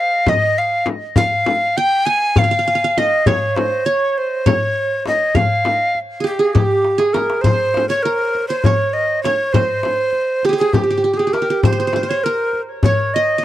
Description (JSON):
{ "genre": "Turkish makam ensemble", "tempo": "201 BPM (eighths)", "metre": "7/8", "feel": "straight", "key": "F makam nihavent", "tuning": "A4 = 439 Hz", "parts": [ { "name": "breathy tenor recorder", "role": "melody", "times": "0.0-13.4 s", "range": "G4 to Ab5", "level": "-17 LUFS", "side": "equal", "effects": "tape echo" }, { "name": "qanun", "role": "second line", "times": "0.0-13.4 s", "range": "G4 to Ab5", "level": "-22 LUFS", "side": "right 5 dB", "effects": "none" }, { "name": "darbuka", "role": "percussion", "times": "0.3-13.0 s", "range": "none", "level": "-20 LUFS", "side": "left 2 dB", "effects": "none" }, { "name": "frame drum", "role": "percussion", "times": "0.3-13.0 s", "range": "none", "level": "-20 LUFS", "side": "left 3 dB", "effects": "none" } ], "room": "light reverb", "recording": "dry, close 1970s-style studio recording", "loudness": "-14 LUFS", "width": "side -14 dB against mid", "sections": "0.0-7.5 A section; 7.5-13.4 B section", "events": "drum fill 6.9-7.5", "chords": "none", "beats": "0.28 0.58 0.88 | 1.18 1.47 1.77 2.07 2.37 2.67 2.97 | 3.27 3.57 3.87 4.16 4.46 4.76 5.06 | 5.36 5.66 5.96 6.26 6.56 6.86 7.16 | 7.45 7.75 8.05 8.35 8.65 8.95 9.25 | 9.55 9.85 10.15 10.45 10.75 11.05 11.35 | 11.64 11.94 12.24 12.54 12.84 13.14 13.44" }